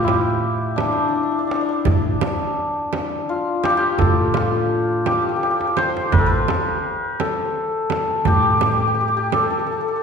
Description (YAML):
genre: Persian modal ensemble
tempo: 56 BPM (dotted quarters)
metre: 6/8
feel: straight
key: A dastgah shur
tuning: A4 = 440 Hz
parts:
  - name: santur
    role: melody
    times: 0.0-10.0 s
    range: D4 to C5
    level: -19 LUFS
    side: left 2 dB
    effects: none
  - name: upright bass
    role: bass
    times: 0.0-9.4 s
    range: A1 to A2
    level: -26 LUFS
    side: right 1 dB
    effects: none
  - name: frame drum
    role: percussion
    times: 0.1-9.5 s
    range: none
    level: -26 LUFS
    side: right 4 dB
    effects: none
  - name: tombak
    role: percussion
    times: 0.1-9.5 s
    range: none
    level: -25 LUFS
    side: right 2 dB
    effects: none
room: wet concert hall reverb, RT60 1.9 s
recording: recorded in a church or concert hall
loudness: -17 LUFS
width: side -6 dB against mid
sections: 0.0-10.0 A section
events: drum fill 5.4-6.1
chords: none